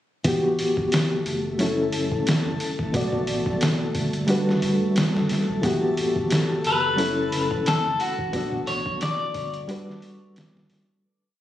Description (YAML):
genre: trip hop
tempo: 89 BPM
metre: 4/4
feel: swing 56% on 16ths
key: E dorian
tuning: A4 = 440 Hz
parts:
  - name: barky reed electric piano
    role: accompaniment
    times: 0.2-11.1 s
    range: B2 to D5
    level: -24 LUFS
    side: left 1 dB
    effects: overdrive, tremolo, tape echo
  - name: warm sub bass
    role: bass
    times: 0.2-10.7 s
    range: D1 to B1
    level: -32 LUFS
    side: equal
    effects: none
  - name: trip hop sampler-style drum kit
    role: drums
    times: 0.2-10.9 s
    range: hi-hat, kick drum, snare drum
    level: -26 LUFS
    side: equal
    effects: overdrive
  - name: backwards swelling texture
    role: texture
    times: 1.2-11.0 s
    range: A3 to A4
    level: -33 LUFS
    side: left 1 dB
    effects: built-in reverb
  - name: clean electric guitar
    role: melody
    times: 6.7-10.0 s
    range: F#4 to D5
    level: -25 LUFS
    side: left 2 dB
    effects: tape echo
room: light reverb, digital ambience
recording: recorded on a phone in the room, studio reverb, vinyl crackle, compression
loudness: -21 LUFS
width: side -12 dB against mid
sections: 0.2-11.0 groove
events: fade-out 7.4-11.0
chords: 0.2 Emadd9; 1.6 F#m7; 2.9 Gmaj7; 5.6 Emadd9; 7.0 F#m7; 8.3 Bm; 9.7 Gmaj7